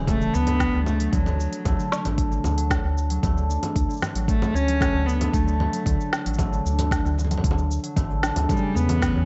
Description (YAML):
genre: folktronica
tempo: 114 BPM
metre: 4/4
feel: straight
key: unclear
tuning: A4 = 439 Hz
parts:
  - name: concert harp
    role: arpeggios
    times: 0.0-9.3 s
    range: C#3 to D4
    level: -30 LUFS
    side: equal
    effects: none
  - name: round analog bass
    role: bass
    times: 0.0-9.3 s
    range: D1 to E2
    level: -27 LUFS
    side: equal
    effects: none
  - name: warm cello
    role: melody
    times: 0.1-9.3 s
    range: F#3 to C#4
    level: -29 LUFS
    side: equal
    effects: none
  - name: electronic kick drum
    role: drums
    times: 0.1-9.1 s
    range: none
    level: -28 LUFS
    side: equal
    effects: none
  - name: organic electronic drum kit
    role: drums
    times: 0.1-9.1 s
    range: congas, hi-hat, shaker, snare drum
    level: -31 LUFS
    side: equal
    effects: none
room: light reverb, digital ambience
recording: vinyl crackle, nothing above 7.9 kHz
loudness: -23 LUFS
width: mono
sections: 0.0-8.5 A section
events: none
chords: 0.1 Bm7/D (rootless); 8.5 Em69